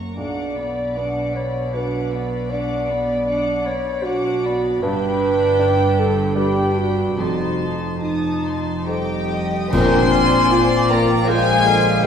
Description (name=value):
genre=cinematic, emotional film score for orchestra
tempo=68-79 BPM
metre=3/4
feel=rubato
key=unclear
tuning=A4 = 435 Hz
part: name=warm studio violin section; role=melody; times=0.0-12.0 s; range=G5 to Eb6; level=-26 LUFS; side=left 4 dB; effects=none
part: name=warm studio violin section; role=second line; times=0.0-12.1 s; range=G4 to A#5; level=-28 LUFS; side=left 3 dB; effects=none
part: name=felt-muted upright piano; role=accompaniment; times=0.0-12.1 s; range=B1 to F#5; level=-25 LUFS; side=right 1 dB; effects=none
part: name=warm studio viola section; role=accompaniment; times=0.0-12.1 s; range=D3 to D5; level=-26 LUFS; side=right 1 dB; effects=none
part: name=warm clarinet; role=second line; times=0.2-9.3 s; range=F4 to D5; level=-22 LUFS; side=right 1 dB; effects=none
part: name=rich studio double bass section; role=bass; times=0.2-12.1 s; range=F1 to B1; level=-27 LUFS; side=right 1 dB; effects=none
part: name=warm studio cello section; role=bass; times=0.2-12.1 s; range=F2 to B2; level=-28 LUFS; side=right 1 dB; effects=none
part: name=cymbal swell, clash cymbals and concert bass drum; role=percussion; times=7.2-11.2 s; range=none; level=-30 LUFS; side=equal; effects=none
part: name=mellow hollow flute section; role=second line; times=8.9-12.1 s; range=Eb5 to Ab5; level=-25 LUFS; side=equal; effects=none
part: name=dark French horn section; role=sustained chords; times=8.9-12.1 s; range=G3 to C4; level=-22 LUFS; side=left 4 dB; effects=none
part: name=clear oboe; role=second line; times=9.7-12.1 s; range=D5 to G5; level=-26 LUFS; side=equal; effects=none
part: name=timpani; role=percussion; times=9.7-10.9 s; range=Bb2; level=-26 LUFS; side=left 1 dB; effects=none
room=wet scoring stage reverb, RT60 1.8 s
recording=heard from further back in the room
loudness=-17 LUFS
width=side -7 dB against mid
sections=0.0-9.7 A section; 9.7-12.1 B section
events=band accent 9.7-10.5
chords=0.2 Bm; 4.8 G; 7.2 F7; 9.7 Bb